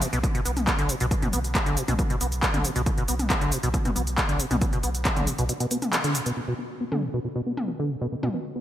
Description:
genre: driving peak-time techno.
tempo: 137 BPM.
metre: 4/4.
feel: straight.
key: B minor.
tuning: A4 = 440 Hz.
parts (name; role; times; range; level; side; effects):
acid bass, saw; riff; 0.0-8.6 s; B2 to B3; -28 LUFS; equal; analog chorus, sidechain pumping, digital delay.
techno drum kit; drums; 0.0-8.3 s; handclaps, hi-hat, shaker, toms; -28 LUFS; equal; overdrive, low-pass filter on hats, low-pass filter on snare, low-pass filter on perc, low-pass filter on toms, gated reverb.
warm sub bass; bass; 0.1-5.5 s; B1; -30 LUFS; equal; overdrive, sidechain pumping, low-pass filter.
electronic kick drum; drums; 0.2-5.1 s; none; -26 LUFS; equal; overdrive.
room: light reverb, digital ambience.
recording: bright 1980s-style digital production.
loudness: -23 LUFS.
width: side -12 dB against mid.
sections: 0.0-6.4 A section; 6.4-8.6 B section.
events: filter sweep on acid bass 0.0-6.4, 6.4-8.6; band accent 5.9; filter sweep on drum 6.4-8.6.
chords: 0.0 Bm.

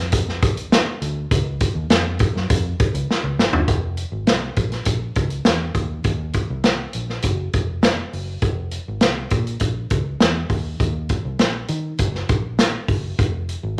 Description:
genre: uptempo 1960s-style soul.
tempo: 101 BPM.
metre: 4/4.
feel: straight.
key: unclear.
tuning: A4 = 440 Hz.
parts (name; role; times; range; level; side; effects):
fingered electric bass; bass; 0.0-13.8 s; F1 to Eb3; -28 LUFS; equal; none.
natural country drum kit; drums; 0.1-13.6 s; hi-hat, kick drum, snare drum, toms; -21 LUFS; equal; none.
room: moderate large studio reverb, RT60 0.9 s.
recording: none.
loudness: -21 LUFS.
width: mono.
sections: 0.0-3.7 A section; 3.7-13.8 B section.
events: drum fill 3.1-3.7.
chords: none.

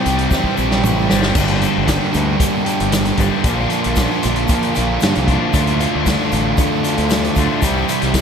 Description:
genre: classic rock.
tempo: 115 BPM.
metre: 4/4.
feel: straight.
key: G dorian.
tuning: A4 = 439 Hz.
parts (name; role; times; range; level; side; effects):
distorted electric guitar; riff; 0.0-8.2 s; G2 to G4; -21 LUFS; left 10 dB; distortion.
sludgy distorted guitar; riff; 0.0-8.2 s; G2 to G4; -20 LUFS; right 10 dB; overdrive.
thick fuzz guitar; riff; 0.0-8.2 s; G2 to D4; -22 LUFS; equal; distortion, slapback echo.
growling fingered electric bass; bass; 0.1-8.2 s; G1 to G2; -21 LUFS; equal; overdrive.
vintage drum kit; drums; 0.1-8.2 s; crash cymbal, hi-hat, kick drum, snare drum, toms; -20 LUFS; equal; none.
egg shaker; percussion; 0.1-8.2 s; none; -35 LUFS; left 11 dB; none.
room: moderate lush hall reverb, RT60 1.9 s, studio ambience.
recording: big arena sound.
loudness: -14 LUFS.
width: side -7 dB against mid.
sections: 0.0-8.2 A section.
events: drum fill 0.3-1.4.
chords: 0.0 C; 1.4 Gm; 3.4 Bb; 5.5 Dm; 7.6 C.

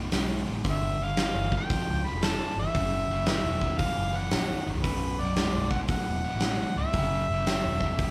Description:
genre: blues rock power trio and southern rock.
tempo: 115 BPM.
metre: 4/4.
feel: swing 66% on 8ths.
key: unclear.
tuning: A4 = 440 Hz.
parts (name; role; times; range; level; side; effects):
overdriven semi-hollow guitar; riff; 0.0-8.1 s; B1 to E#3; -34 LUFS; equal; none.
vintage muted fingered electric bass; bass; 0.0-8.1 s; B0 to C#2; -35 LUFS; equal; none.
big rock drum kit; drums; 0.1-8.1 s; hi-hat, kick drum, snare drum; -32 LUFS; equal; none.
overdriven harmonica; melody; 0.7-8.1 s; G4 to B5; -34 LUFS; equal; none.
room: light reverb.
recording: band playing live in one room.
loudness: -28 LUFS.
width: mono.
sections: 0.0-8.1 A section.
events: none.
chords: 0.0 B5; 0.7 G5; 2.8 F#7(no3); 4.8 B5; 6.9 F#5.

